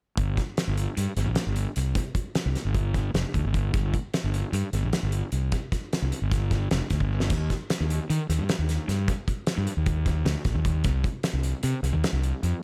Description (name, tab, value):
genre	math rock and midwest emo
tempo	304 BPM (eighths)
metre	9/8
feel	straight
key	G minor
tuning	A4 = 442 Hz
part	fuzz fingered electric bass	bass	0.2-12.5 s	F1 to Eb3	-28 LUFS	equal	overdrive
part	loose indie drum kit	drums	0.2-12.5 s	hi-hat, kick drum, snare drum, splash cymbal	-31 LUFS	equal	tape echo
room	little or no reverb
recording	echo-heavy mix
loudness	-27 LUFS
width	mono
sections	0.2-12.6 A section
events	drum fill 7.0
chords	none